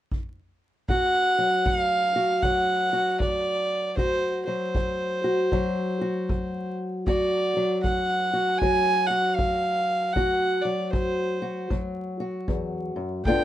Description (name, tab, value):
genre	acoustic country blues, solo or duo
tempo	78 BPM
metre	4/4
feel	swing 62% on 8ths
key	D mixolydian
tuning	A4 = 440 Hz
part	kick drum	drums	0.1-13.4 s	none	-28 LUFS	equal	none
part	warm fiddle	melody	0.9-13.4 s	C5 to G#5	-24 LUFS	right 1 dB	none
part	fingerpicked old ladder-braced acoustic guitar	accompaniment	0.9-13.4 s	D2 to F#4	-26 LUFS	left 1 dB	none
room	moderate small room reverb, RT60 0.6 s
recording	minimal, uncompressed stereo recording, vinyl crackle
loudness	-22 LUFS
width	side -12 dB against mid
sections	0.9-13.4 A section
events	none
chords	0.0 N.C.; 0.9 D7